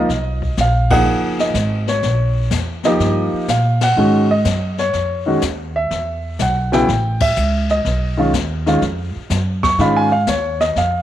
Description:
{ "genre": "jazz piano trio", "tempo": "124 BPM", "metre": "4/4", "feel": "swing 68% on 8ths", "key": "unclear", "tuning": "A4 = 444 Hz", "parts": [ { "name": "warm baby grand piano", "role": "melody", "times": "0.0-11.0 s", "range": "C#3 to C#6", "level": "-17 LUFS", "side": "equal", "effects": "none" }, { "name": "upright bass", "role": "bass", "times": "0.0-11.0 s", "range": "F#1 to A#2", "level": "-19 LUFS", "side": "right 1 dB", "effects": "none" }, { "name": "jazz brush drum kit", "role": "drums", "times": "0.1-11.0 s", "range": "brushed snare drum, hi-hat, kick drum, ride cymbal, snare drum", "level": "-25 LUFS", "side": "left 6 dB", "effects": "none" } ], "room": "light reverb, small room ambience", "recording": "1960s-style stereo", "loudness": "-15 LUFS", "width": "side -12 dB against mid", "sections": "0.0-11.0 A section", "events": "band accent 0.8, 3.7, 7.1", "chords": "0.1 Bmaj7; 2.0 A#m; 3.0 D#; 4.0 G#5; 5.9 E5; 6.9 A; 7.8 Badd9; 9.8 C#" }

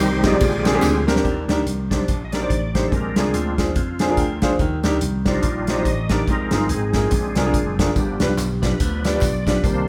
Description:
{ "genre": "uptempo gospel", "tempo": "143 BPM", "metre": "4/4", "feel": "swing 59% on 8ths", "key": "Eb major", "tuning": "A4 = 440 Hz", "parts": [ { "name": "warm grand piano", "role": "accompaniment", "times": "0.0-9.9 s", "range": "G2 to Ab5", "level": "-25 LUFS", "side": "equal", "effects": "none" }, { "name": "bright tonewheel organ", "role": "sustained chords", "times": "0.0-9.9 s", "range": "D3 to Eb5", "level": "-27 LUFS", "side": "equal", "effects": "fast rotary speaker, chorus vibrato" }, { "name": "slap bass", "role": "bass", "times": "0.0-9.8 s", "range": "Gb1 to F2", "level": "-27 LUFS", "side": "equal", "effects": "none" }, { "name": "natural country drum kit", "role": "drums", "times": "0.2-9.8 s", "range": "hi-hat, kick drum, ride cymbal, snare drum", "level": "-25 LUFS", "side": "equal", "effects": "none" }, { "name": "tambourine and handclaps", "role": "percussion", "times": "0.2-1.2, 8.0-9.8 s", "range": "none", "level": "-37 LUFS", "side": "equal", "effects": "none" } ], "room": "moderate large studio reverb, RT60 1.2 s", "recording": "band playing live in one room", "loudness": "-20 LUFS", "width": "mono", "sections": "0.0-1.2 A section; 1.2-9.9 B section", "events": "tonewheel organ solo 0.0-1.2, 1.2-9.9; drum fill 0.8-1.2; grand piano fill 3.8-4.6", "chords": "0.4 Bb13; 1.2 Ebmaj7; 2.9 Bb7; 4.6 Ebmaj7; 6.3 Bb7sus4; 7.1 Bb7; 8.0 G7" }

